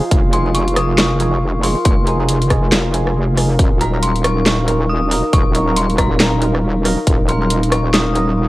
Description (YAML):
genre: deep dubstep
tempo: 138 BPM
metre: 4/4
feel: swing 60% on 16ths, half-time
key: unclear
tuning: A4 = 440 Hz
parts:
  - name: dark analog pad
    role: sustained chords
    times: 0.0-8.5 s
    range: Eb4 to F5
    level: -22 LUFS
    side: right 1 dB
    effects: chorus
  - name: percussive organ stab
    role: stabs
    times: 0.0-8.3 s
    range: F3 to Bb4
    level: -24 LUFS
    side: right 2 dB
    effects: chorus, phaser, dub echo
  - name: wobble bass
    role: bass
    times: 0.1-8.5 s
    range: Eb1 to F1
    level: -17 LUFS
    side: equal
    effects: chorus
  - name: dubstep drum kit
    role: drums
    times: 0.1-8.3 s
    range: handclaps, hi-hat, rim click, snare drum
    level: -18 LUFS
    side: equal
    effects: studio ambience
  - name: electronic kick drum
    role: drums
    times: 0.1-7.2 s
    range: none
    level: -15 LUFS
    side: equal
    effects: studio ambience
  - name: dark detuned synth bell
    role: melody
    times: 0.3-8.5 s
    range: Bb5 to Eb6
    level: -23 LUFS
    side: left 2 dB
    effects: chorus, dub echo
room: little or no reverb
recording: dry, gritty hardware recording, cassette tape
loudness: -13 LUFS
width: side -18 dB against mid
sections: 0.0-8.5 A section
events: none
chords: 0.0 Fm7; 3.6 Ebm